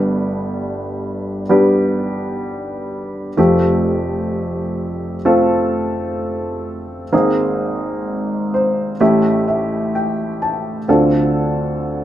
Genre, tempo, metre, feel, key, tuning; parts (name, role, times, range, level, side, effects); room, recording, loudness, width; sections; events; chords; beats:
pop; 64 BPM; 4/4; straight; A4 = 437 Hz
dark upright piano; solo; 0.0-12.0 s; F1 to A5; -16 LUFS; equal
moderate studio reverb, RT60 0.6 s; band playing live in one room; -16 LUFS; side -12 dB against mid
0.0-10.9 A section; 10.9-12.0 B section
upright piano fill 8.1-10.9
0.0 G; 3.4 Fadd9; 7.1 Abadd9; 9.0 A7; 10.9 Dm7
0.56 1.50 2.44 | 3.38 4.31 5.25 6.19 | 7.13 8.06 9.00 9.94 | 10.88 11.81